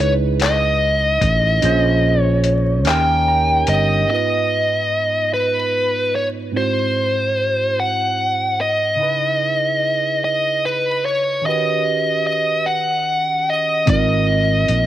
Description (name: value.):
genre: slow six-eight R&B.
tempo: 49 BPM (dotted quarters).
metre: 6/8.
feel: straight.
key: unclear.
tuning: A4 = 442 Hz.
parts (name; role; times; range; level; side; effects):
bluesy overdriven lead guitar; melody; 0.0-14.9 s; B4 to G5; -17 LUFS; left 1 dB; distortion.
barky tine electric piano; accompaniment; 0.0-14.9 s; G#2 to A#5; -23 LUFS; right 6 dB; overdrive, phaser.
sustaining fretless electric bass; bass; 0.0-4.0, 13.9-14.9 s; G1 to D#2; -18 LUFS; equal; none.
dusty soul sampler-style drum kit; drums; 0.4-3.9, 13.9-14.9 s; handclaps, hi-hat, kick drum; -22 LUFS; left 3 dB; overdrive.
room: light reverb.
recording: 1960s-style stereo, vinyl crackle.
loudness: -15 LUFS.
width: side -12 dB against mid.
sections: 0.0-4.1 A section; 4.1-14.9 B section.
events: kick muted 1.6-4.1; tine electric piano fill 2.9-4.1.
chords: 0.0 C#m9; 1.6 A#m7; 2.9 D#7; 4.1 G#m6; 6.5 G#aug7; 9.0 C#m9; 11.4 D#7alt; 13.9 G#69.